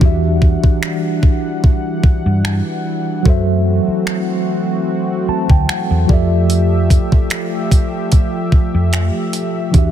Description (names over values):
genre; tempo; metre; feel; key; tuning
contemporary R&B; 74 BPM; 4/4; swing 54% on 16ths; unclear; A4 = 441 Hz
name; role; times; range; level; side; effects
mellow tine electric piano; accompaniment; 0.0-9.9 s; E3 to A5; -19 LUFS; right 1 dB; medium stereo tremolo
warm analog pad; sustained chords; 0.0-9.9 s; E3 to F#5; -23 LUFS; left 1 dB; chorus
hollow-body short-scale fingered electric bass; bass; 0.0-9.9 s; D2 to G2; -16 LUFS; equal; none
crisp 8-bit digital drum machine; drums; 0.0-9.9 s; finger snaps, hi-hat, kick drum; -13 LUFS; equal; soft clipping on snare
room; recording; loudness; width
digital ambience; dense, heavily limited modern master; -13 LUFS; side -10 dB against mid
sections
0.0-9.9 A section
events
tine electric piano fill 4.9-6.5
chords
0.0 Em9; 3.3 F#m7b5; 6.1 Fmaj9